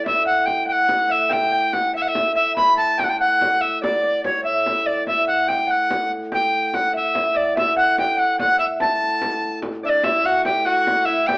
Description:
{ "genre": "medieval dance", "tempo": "96 BPM (dotted quarters)", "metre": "6/8", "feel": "straight", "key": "unclear", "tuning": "A4 = 440 Hz", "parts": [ { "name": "bright reedy tenor recorder", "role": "melody", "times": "0.0-11.4 s", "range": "C#5 to B5", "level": "-18 LUFS", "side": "equal", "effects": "none" }, { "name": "concert harp", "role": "second line", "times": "0.0-11.4 s", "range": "C#5 to B5", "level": "-25 LUFS", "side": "right 1 dB", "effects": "none" }, { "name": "hand-pumped harmonium", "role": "drone", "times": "0.0-11.4 s", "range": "A2", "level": "-32 LUFS", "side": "left 1 dB", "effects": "none" }, { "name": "frame drum", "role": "percussion", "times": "0.1-11.4 s", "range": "none", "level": "-31 LUFS", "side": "equal", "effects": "none" }, { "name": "clear tenor saxophone", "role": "second line", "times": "9.8-11.4 s", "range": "D4 to G4", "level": "-25 LUFS", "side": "equal", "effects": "none" } ], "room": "wet studio reverb, RT60 0.8 s", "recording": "band playing live in one room, AM radio sound", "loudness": "-17 LUFS", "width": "side -26 dB against mid", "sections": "0.1-10.0 A section; 10.0-11.4 A section", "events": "none", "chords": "none" }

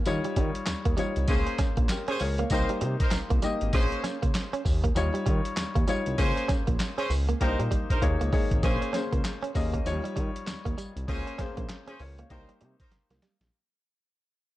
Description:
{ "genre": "R&B, new jack swing", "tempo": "98 BPM", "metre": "4/4", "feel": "swing 61% on 16ths", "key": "Bb dorian", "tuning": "A4 = 440 Hz", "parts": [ { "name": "warm baby grand piano", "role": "accompaniment", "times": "0.0-13.6 s", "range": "F3 to F5", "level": "-32 LUFS", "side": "left 3 dB", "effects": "none" }, { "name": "direct-recorded clean electric guitar", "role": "riff", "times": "0.0-13.4 s", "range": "G3 to Db4", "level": "-34 LUFS", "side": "right 5 dB", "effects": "wide subtle chorus" }, { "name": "smooth gliding synth bass", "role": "bass", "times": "0.1-13.5 s", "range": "Ab1 to Eb3", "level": "-30 LUFS", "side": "equal", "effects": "none" }, { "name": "boom bap sampler-style drum kit", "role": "drums", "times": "0.1-13.5 s", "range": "handclaps, hi-hat, kick drum, snare drum, tambourine", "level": "-28 LUFS", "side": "equal", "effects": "vintage 12-bit sampler grit" }, { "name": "clear horn section", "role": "stabs", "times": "1.3-12.9 s", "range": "Db4 to C5", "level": "-33 LUFS", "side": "right 2 dB", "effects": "none" } ], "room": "digital ambience", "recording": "none", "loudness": "-25 LUFS", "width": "side -16 dB against mid", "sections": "0.0-8.6 A section; 8.6-13.5 B section", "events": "drum fill 7.4-8.6, 12.9-13.5; fade-out 8.6-13.5", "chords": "0.1 Eb9; 1.3 Bbm9; 2.5 Cm7; 3.7 Bbm9; 5.0 Eb9; 6.2 Bbm9; 7.4 Cm7; 8.0 Eb7sus4; 8.6 Bbm9; 9.9 Eb9; 11.1 Bbm9; 12.3 Cm7" }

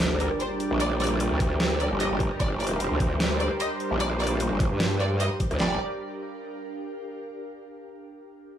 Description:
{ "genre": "heavy wobble dubstep", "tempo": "150 BPM", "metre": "4/4", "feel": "swing 54% on 16ths, half-time", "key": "G minor", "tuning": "A4 = 440 Hz", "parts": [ { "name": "lush unison pad", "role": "sustained chords", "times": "0.0-5.8 s", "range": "G3 to D5", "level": "-32 LUFS", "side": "equal", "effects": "chorus, sidechain pumping" }, { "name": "growl bass", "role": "bass", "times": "0.0-5.8 s", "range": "F1 to G2", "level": "-26 LUFS", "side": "equal", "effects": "distortion, chorus, overdrive" }, { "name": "dubstep drum kit", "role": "drums", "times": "0.0-5.6 s", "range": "hi-hat, rim click, snare drum", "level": "-30 LUFS", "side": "right 1 dB", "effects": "overdrive" }, { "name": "impact", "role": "sound effects", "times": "0.0-0.8 s", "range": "none", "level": "-42 LUFS", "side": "equal", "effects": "none" }, { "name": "ethereal airy pad", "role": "texture", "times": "0.1-7.2 s", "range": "D4 to G5", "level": "-35 LUFS", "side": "right 2 dB", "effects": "ensemble chorus, built-in reverb, phaser, sidechain pumping" }, { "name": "warm symphonic violin section", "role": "melody", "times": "0.2-5.8 s", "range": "Bb4 to Eb5", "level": "-33 LUFS", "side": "equal", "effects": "tape echo" }, { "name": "dubstep drum kit", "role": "drums", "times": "1.4-5.7 s", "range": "handclaps, kick drum, snare drum", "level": "-26 LUFS", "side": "equal", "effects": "overdrive" } ], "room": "light reverb, digital ambience", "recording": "studio reverb", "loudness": "-23 LUFS", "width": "side -10 dB against mid", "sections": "0.0-5.6 A section; 5.6-7.2 B section", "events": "fade-out on ambient pad 0.0-5.6; impact 0.0-0.8", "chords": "0.0 Gm" }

